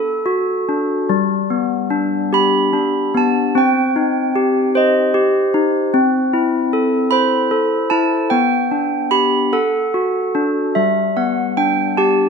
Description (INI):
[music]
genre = children's music, lullaby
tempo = 49 BPM (dotted quarters)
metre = 6/8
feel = rubato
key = G major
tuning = A4 = 440 Hz
[part]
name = handbells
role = solo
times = 0.0-12.3 s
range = G3 to B5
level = -14 LUFS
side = equal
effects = none
[sound]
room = moderate recital hall reverb, RT60 1.8 s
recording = minimal, uncompressed stereo recording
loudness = -14 LUFS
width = side -5 dB against mid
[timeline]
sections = 0.0-1.1 A section; 1.1-10.8 B section; 10.8-12.3 A section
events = none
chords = 0.0 D; 1.1 G; 3.6 Cm; 5.9 Am/C; 8.3 G; 9.5 D; 10.8 G